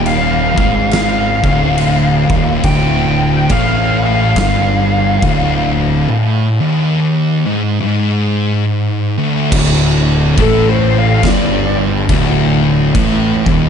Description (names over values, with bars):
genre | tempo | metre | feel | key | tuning
stoner and doom metal | 70 BPM | 4/4 | swing 60% on 8ths | D minor | A4 = 440 Hz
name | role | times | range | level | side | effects
fuzz lead guitar | melody | 0.0-11.8 s | A4 to G5 | -17 LUFS | left 2 dB | distortion, analog delay
thick fuzz guitar | riff | 0.0-13.7 s | D2 to A2 | -17 LUFS | left 9 dB | distortion
thick fuzz guitar | riff | 0.0-13.7 s | D2 to A2 | -16 LUFS | right 7 dB | distortion
fuzz fingered electric bass | bass | 0.0-13.7 s | D1 to A1 | -18 LUFS | equal | overdrive
oversized low-tuned drum kit | drums | 0.1-13.6 s | crash cymbal, kick drum, snare drum | -19 LUFS | equal | none
room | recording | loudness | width
small room ambience | nothing above 10.5 kHz | -11 LUFS | side -7 dB against mid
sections
0.0-9.5 A section; 9.5-13.7 B section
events
lead electric guitar solo 9.5-13.7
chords
0.0 D5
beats
0.06 0.92 1.78 | 2.65 3.51 4.37 5.23 | 6.09 6.95 7.81 8.67 | 9.53 10.38 11.24 12.10 | 12.95